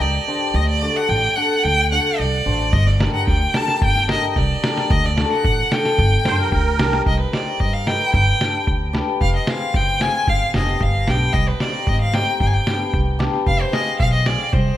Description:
klezmer; 112 BPM; 2/4; straight; G harmonic minor, C harmonic minor from 7.1 s; A4 = 440 Hz
warm violin; melody; 0.0-14.8 s; B4 to A5; -21 LUFS; equal; tape echo
upright bass; bass; 0.0-14.7 s; F1 to G2; -21 LUFS; equal
cimbalom; accompaniment; 0.3-14.4 s; B3 to C5; -24 LUFS; left 2 dB
lo-fi sampler-style drum kit; drums; 2.7-14.7 s; kick drum, snare drum; -22 LUFS; equal
musette accordion; second line; 6.3-7.0 s; Bb4 to C5; -23 LUFS; right 6 dB
light reverb; -16 LUFS; side -12 dB against mid
0.0-7.1 A section; 7.1-14.8 B section
speeding up 0.0-14.8
0.0 G5; 0.6 D; 2.7 Gm; 4.9 D; 6.0 Gm; 7.1 Cm; 8.1 G; 9.2 Fm; 10.3 G; 11.3 Cm; 12.4 G; 13.5 Fm

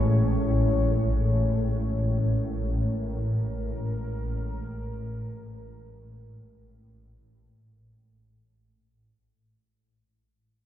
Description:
dark ambient drone; free time; A4 = 443 Hz
deep dark ambient pad; sustained chords; 0.0-9.4 s; A2 to C#5; -31 LUFS; left 2 dB; chorus, built-in reverb
swarming drone; drone; 0.0-9.6 s; A1 to A2; -26 LUFS; equal; built-in reverb, analog chorus
quartz singing bowl; texture; 0.0-9.5 s; G#3 to G#4; -41 LUFS; right 8 dB
moderate plate reverb, RT60 2.9 s; dreamy mix soaked in reverb; -24 LUFS; side -11 dB against mid
0.0-9.4 A section
fade-out on ambient pad 0.0-9.4; fade-out 0.0-9.4
0.0 C#5/A

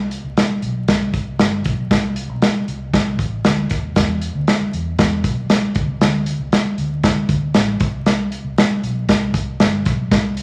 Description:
uptempo 1960s-style soul; 117 BPM; 4/4; straight; A4 = 440 Hz
vintage muted fingered electric bass; bass; 0.0-10.4 s; G1 to E2; -26 LUFS; equal
natural country drum kit; drums; 0.1-10.4 s; hi-hat, kick drum, snare drum; -19 LUFS; equal
moderate large studio reverb, RT60 1.2 s; vinyl crackle; -18 LUFS; mono
0.0-10.4 A section

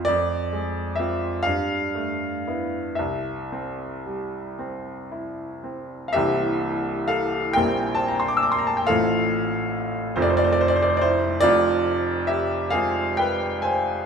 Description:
classical, romantic nocturne for solo piano; 37-48 BPM (dotted quarters); 12/8; rubato; C major; A4 = 440 Hz
bright upright piano; solo; 0.0-14.1 s; C1 to E6; -21 LUFS; equal
wet recital hall reverb, RT60 1.6 s; minimal, uncompressed stereo recording; -21 LUFS; side -6 dB against mid
0.0-6.1 A section; 6.1-14.1 B section
0.1 Fm; 1.5 G13; 3.0 C; 7.5 C7/Bb; 8.9 F/A; 10.1 F; 11.4 Fm

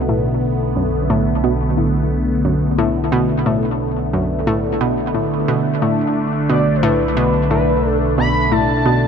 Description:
ambient, sequencer-driven space music; 89 BPM; 4/4; straight; B minor; A4 = 440 Hz
phased analog pad; sustained chords; 0.0-9.1 s; D3 to D4; -18 LUFS; equal; phaser, chorus
analog pluck; riff; 0.0-9.1 s; F#2 to B2; -20 LUFS; equal; chorus, tape echo
fat analog bass; bass; 0.0-9.1 s; B1; -22 LUFS; equal
expressive portamento lead; melody; 6.5-9.1 s; B4 to B5; -19 LUFS; right 1 dB; analog chorus, tape echo
moderate plate reverb, RT60 2.8 s; -15 LUFS; side -7 dB against mid
0.0-9.1 A section
0.0 Bm7

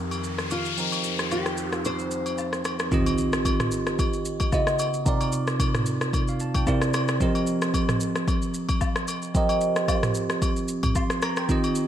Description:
amapiano; 112 BPM; 4/4; swing 55% on 16ths; A4 = 440 Hz
bell-like tine electric piano; accompaniment; 0.0-11.9 s; C3 to C6; -25 LUFS; right 2 dB; phaser
hollow soft pad; sustained chords; 0.0-2.9 s; F2 to Bb4; -37 LUFS; left 1 dB; chorus, sidechain pumping
noise sweep and impact; sound effects; 0.0-5.1 s; -33 LUFS; left 3 dB
afro-pop drum kit; drums; 0.1-11.9 s; kick drum, rim click, shaker, toms; -26 LUFS; left 1 dB; gated reverb
agogo bells and woodblock; percussion; 0.1-11.8 s; -34 LUFS; left 3 dB
nylon-string guitar; melody; 0.5-2.6 s; F4 to C5; -32 LUFS; left 2 dB; analog chorus, ping-pong delay
moderate plate reverb, RT60 2.3 s; bright 1980s-style digital production; -22 LUFS; side -10 dB against mid
0.0-2.9 A section; 2.9-11.9 B section
noise sweep 0.0-2.9; impact 2.9-5.1
0.0 F9sus4; 2.9 Eb6; 4.5 Dbm11; 5.1 Cm11; 6.7 C7; 7.2 F9sus4

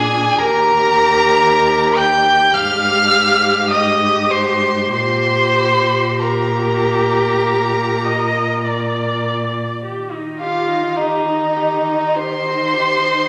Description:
classical, slow romantic movement for string quartet; 47-58 BPM; 4/4; rubato; Eb major; A4 = 440 Hz
rich violin; melody; 0.0-13.3 s; Eb5 to G6; -20 LUFS; equal
rich violin; second line; 0.0-13.3 s; Eb4 to G5; -20 LUFS; equal
warm viola; accompaniment; 0.0-13.3 s; D4 to Eb5; -23 LUFS; equal
rich cello; bass; 0.0-13.3 s; Eb2 to Eb3; -26 LUFS; equal
wet recital hall reverb, RT60 1.5 s; -16 LUFS; mono
0.0-9.8 A section; 9.8-13.3 B section
0.4 Eb; 2.5 Fm9/Ab; 4.9 Gmadd11/Bb; 7.4 Bb; 9.8 Eb

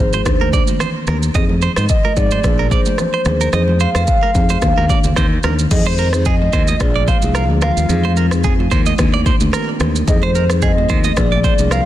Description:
afrobeats; 110 BPM; 4/4; swing 55% on 16ths; F dorian; A4 = 437 Hz
hollow clarinet-like synth lead; melody; 0.0-11.9 s; C5 to F5; -21 LUFS; equal; chorus, digital delay
buzzing marimba with soft mallets; accompaniment; 0.0-11.8 s; Eb3 to Ab4; -22 LUFS; left 1 dB
modern bright fingered electric bass; bass; 0.0-11.8 s; Ab1 to Ab2; -17 LUFS; equal
direct-recorded clean electric guitar; riff; 0.1-11.8 s; Ab4 to Eb5; -23 LUFS; right 8 dB; digital delay
afro-pop drum kit; drums; 0.1-11.9 s; crash cymbal, kick drum, rim click, shaker; -18 LUFS; equal; soft clipping on snare
congas; percussion; 0.1-11.7 s; -27 LUFS; right 3 dB
deep dark ambient pad; sustained chords; 6.5-11.9 s; D3 to G4; -27 LUFS; left 1 dB; chorus, built-in reverb
light reverb, digital ambience; dense, heavily limited modern master; -13 LUFS; side -13 dB against mid
0.0-5.7 A section; 5.7-11.9 B section
0.3 Ebmaj7; 1.3 Fm7; 2.4 Bb7; 3.5 Fm7; 4.6 Ebmaj7; 5.7 Fm7; 6.8 Bb7; 7.9 Fm7; 9.0 Ebmaj7; 10.1 Fm7; 11.2 Bb7

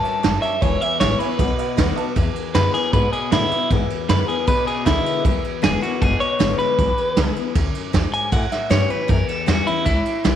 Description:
rockabilly; 156 BPM; 4/4; straight; E mixolydian; A4 = 440 Hz
electric guitar at the edge of break-up; melody; 0.0-10.4 s; E4 to A5; -22 LUFS; equal; spring reverb, tape echo
picked steel-string acoustic guitar; accompaniment; 0.0-10.4 s; E2 to F#4; -25 LUFS; left 11 dB
tack piano; accompaniment; 0.0-2.1 s; B4 to A5; -29 LUFS; right 10 dB
upright bass; bass; 0.0-10.4 s; E1 to A2; -22 LUFS; equal
vintage brush drum kit; drums; 0.0-10.3 s; kick drum, ride cymbal, snare drum; -22 LUFS; right 3 dB
light reverb, small room ambience; 1960s-style stereo with parts hard left and right; -17 LUFS; side -10 dB against mid
0.0-2.2 A section; 2.2-10.4 A section
0.0 A7; 0.6 E7; 1.4 B7; 2.2 E7; 8.3 A7

